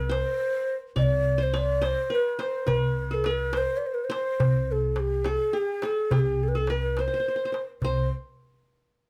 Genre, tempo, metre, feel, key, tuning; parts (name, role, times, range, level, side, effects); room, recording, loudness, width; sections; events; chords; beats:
Arabic maqam ensemble; 70 BPM (dotted quarters); 6/8; straight; C maqam huzam; A4 = 441 Hz
mellow hollow ney; melody; 0.0-8.1 s; G4+39c to Eb5-47c; -29 LUFS; equal
qanun; second line; 0.0-8.1 s; G4+40c to D5-50c; -36 LUFS; equal
upright bass; bass; 0.0-8.1 s; C2; -30 LUFS; equal
darbuka; percussion; 0.1-8.1 s; -31 LUFS; equal
moderate studio reverb, RT60 0.6 s; -26 LUFS; mono
0.0-7.8 A section; 7.8-9.1 B section
0.12 | 0.97 1.83 | 2.69 3.54 | 4.40 5.25 | 6.11 6.96 | 7.82